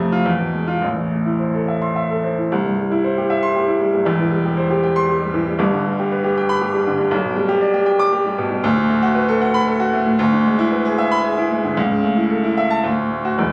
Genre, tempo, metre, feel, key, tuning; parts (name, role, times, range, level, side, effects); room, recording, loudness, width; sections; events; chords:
classical, virtuoso piano study; 104-122 BPM; 3/4; rubato; C major, A major from 8.6 s; A4 = 445 Hz
warm baby grand piano; solo; 0.0-13.5 s; E1 to D6; -18 LUFS; equal
moderate large studio reverb, RT60 0.8 s; recorded on a phone in the room, studio reverb, compression; -18 LUFS; mono
0.0-2.5 A section; 2.5-13.5 B section
0.3 E; 0.8 Am; 2.5 C; 4.1 C/E; 5.6 G; 7.1 G/B; 8.6 Bm7/D; 10.2 E7/D; 11.8 A/C#; 12.8 D